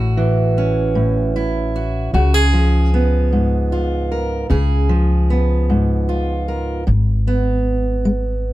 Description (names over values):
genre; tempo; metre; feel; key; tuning
folk; 51 BPM (dotted quarters); 6/8; straight; unclear; A4 = 442 Hz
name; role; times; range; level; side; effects
fingerpicked steel-string acoustic guitar; accompaniment; 0.0-8.5 s; G#2 to A#4; -18 LUFS; right 1 dB; none
upright bass; bass; 0.0-8.5 s; G#1 to C#2; -17 LUFS; equal; none
room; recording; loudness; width
little or no reverb; close, detailed microphones; -15 LUFS; side -16 dB against mid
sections
0.0-6.9 A section; 6.9-8.5 B section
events
none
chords
0.0 A6; 2.1 C#7; 6.9 G#m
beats
0.96 | 2.14 3.32 | 4.50 5.68 | 6.87 8.05